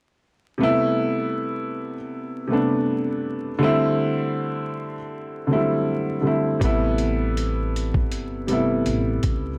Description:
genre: lo-fi hip hop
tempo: 80 BPM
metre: 4/4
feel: swing 56% on 16ths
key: A minor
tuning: A4 = 440 Hz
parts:
  - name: warm upright piano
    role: accompaniment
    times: 0.6-9.6 s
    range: C3 to E4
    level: -24 LUFS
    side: equal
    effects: none
  - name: upright bass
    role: bass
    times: 6.6-9.6 s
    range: G1 to C#2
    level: -29 LUFS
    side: equal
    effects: none
  - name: dusty soul sampler-style drum kit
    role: drums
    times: 6.6-9.4 s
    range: hi-hat, kick drum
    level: -27 LUFS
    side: equal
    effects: none
room: moderate studio ambience, RT60 0.5 s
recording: vinyl crackle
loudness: -23 LUFS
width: mono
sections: 0.6-9.6 A section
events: none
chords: 0.6 Am7; 3.6 D9sus4; 6.6 Am7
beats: | 0.61 1.36 2.11 2.86 | 3.61 4.36 5.11 5.86 | 6.61 7.36 8.11 8.86

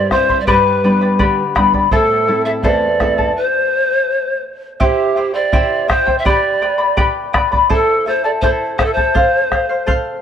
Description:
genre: andean folk, Andean ensemble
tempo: 83 BPM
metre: 2/4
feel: straight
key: A minor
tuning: A4 = 440 Hz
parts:
  - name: reedy pan flute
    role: melody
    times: 0.0-9.9 s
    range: G4 to E5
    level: -16 LUFS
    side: equal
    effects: none
  - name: charango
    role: accompaniment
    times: 0.0-10.2 s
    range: E4 to C6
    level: -16 LUFS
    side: left 2 dB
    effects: none
  - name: nylon-string guitar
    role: accompaniment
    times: 0.0-3.3 s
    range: E2 to E4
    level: -18 LUFS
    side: equal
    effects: none
  - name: bombo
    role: percussion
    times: 0.1-10.0 s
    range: none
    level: -18 LUFS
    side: equal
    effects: none
room: moderate plate reverb, RT60 3.2 s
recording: none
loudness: -12 LUFS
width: side -8 dB against mid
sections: 0.0-4.8 A section; 4.8-10.2 A section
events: stop 3.4-4.8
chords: 0.5 G; 1.9 Am; 3.4 N.C.; 4.8 C; 6.3 G; 7.7 Am; 9.1 F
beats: | 0.47 1.19 | 1.91 2.64 | 3.36 4.08 | 4.81 5.53 | 6.25 6.98 | 7.70 8.43 | 9.15 9.87

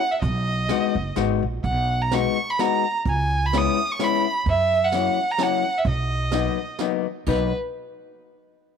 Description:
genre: musette waltz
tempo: 128 BPM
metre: 3/4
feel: straight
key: B major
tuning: A4 = 441 Hz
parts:
  - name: clear violin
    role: melody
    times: 0.0-7.5 s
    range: B4 to D#6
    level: -23 LUFS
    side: right 3 dB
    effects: none
  - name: upright bass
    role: bass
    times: 0.2-7.5 s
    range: F#1 to F#2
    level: -25 LUFS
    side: right 2 dB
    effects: none
  - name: jazz brush drum kit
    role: drums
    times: 0.2-7.4 s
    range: crash cymbal, hi-hat, kick drum, snare drum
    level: -30 LUFS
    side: right 6 dB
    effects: none
  - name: vintage hollow-body jazz guitar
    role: accompaniment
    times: 0.7-7.5 s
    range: F#3 to F#4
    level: -25 LUFS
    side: left 15 dB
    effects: none
room: light reverb, small room reverb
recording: 1960s-style stereo with parts hard left and right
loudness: -20 LUFS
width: side -7 dB against mid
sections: 0.0-7.3 A section; 7.3-8.7 B section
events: none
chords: 0.2 B6; 1.6 G#m7/B; 3.1 C#m7; 4.5 F#7; 5.9 Bmaj7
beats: | 0.22 0.69 1.17 | 1.64 2.11 2.58 | 3.06 3.52 3.99 | 4.46 4.92 5.39 | 5.86 6.32 6.80 | 7.28

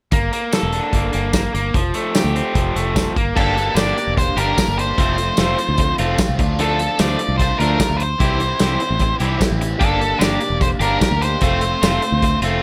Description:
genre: indie rock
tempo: 149 BPM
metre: 4/4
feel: straight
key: G dorian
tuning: A4 = 440 Hz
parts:
  - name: crunchy overdriven guitar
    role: riff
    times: 0.1-12.6 s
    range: E3 to A4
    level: -25 LUFS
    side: equal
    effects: none
  - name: fingered electric bass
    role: bass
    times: 0.1-12.6 s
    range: E1 to D2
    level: -24 LUFS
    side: equal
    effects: none
  - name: loose indie drum kit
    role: drums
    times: 0.1-12.5 s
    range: crash cymbal, hi-hat, kick drum, snare drum, tambourine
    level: -22 LUFS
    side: equal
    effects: none
  - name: octave-fuzz lead guitar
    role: melody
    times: 3.4-12.4 s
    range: A4 to D5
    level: -23 LUFS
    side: equal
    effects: distortion, slapback echo
  - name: crunchy overdriven guitar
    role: riff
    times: 3.4-12.6 s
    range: E3 to G4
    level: -27 LUFS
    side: equal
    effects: lush chorus, slapback echo
room: light reverb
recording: none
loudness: -18 LUFS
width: mono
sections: 0.1-3.4 A section; 3.4-12.6 B section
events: none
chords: 0.1 Gmadd9; 1.7 Fadd9; 3.2 Gm; 3.4 Gmadd9; 5.0 F; 6.4 Dm; 8.2 C; 9.8 Gmadd9; 11.4 F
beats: | 0.13 0.53 0.94 1.34 | 1.75 2.15 2.55 2.96 | 3.36 3.77 4.17 4.57 | 4.97 5.38 5.78 6.18 | 6.59 6.99 7.39 7.80 | 8.20 8.60 9.00 9.41 | 9.81 10.21 10.62 11.02 | 11.42 11.82 12.22

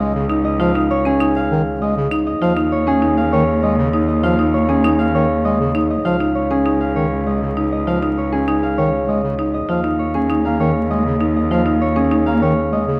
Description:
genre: classical, minimalist pattern music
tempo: 198 BPM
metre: 6/4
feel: straight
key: unclear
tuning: A4 = 439 Hz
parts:
  - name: concert harp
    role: melody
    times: 0.0-13.0 s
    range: Ab4 to F5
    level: -23 LUFS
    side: equal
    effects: none
  - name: warm bass clarinet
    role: accompaniment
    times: 0.0-13.0 s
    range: Db3 to Bb3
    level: -23 LUFS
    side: equal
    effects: none
  - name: rich cello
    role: bass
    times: 0.0-13.0 s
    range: Db2 to Eb2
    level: -23 LUFS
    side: equal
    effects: none
  - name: buzzing marimba with hard mallets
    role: arpeggios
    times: 0.3-12.3 s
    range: Db4 to F4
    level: -22 LUFS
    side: equal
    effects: none
room: moderate large studio reverb, RT60 1.2 s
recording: close, detailed microphones, vinyl crackle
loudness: -17 LUFS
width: mono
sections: 0.0-13.0 A section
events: none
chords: 0.0 Dbadd9; 2.4 Eb9sus4; 6.1 Dbadd9; 9.7 Eb9sus4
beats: 0.30 | 0.60 0.90 1.21 1.51 1.81 2.11 | 2.42 2.72 3.02 3.33 3.63 3.93 | 4.24 4.54 4.84 5.14 5.45 5.75 | 6.05 6.36 6.66 6.96 7.27 7.57 | 7.87 8.18 8.48 8.78 9.08 9.39 | 9.69 9.99 10.30 10.60 10.90 11.21 | 11.51 11.81 12.11 12.42 12.72

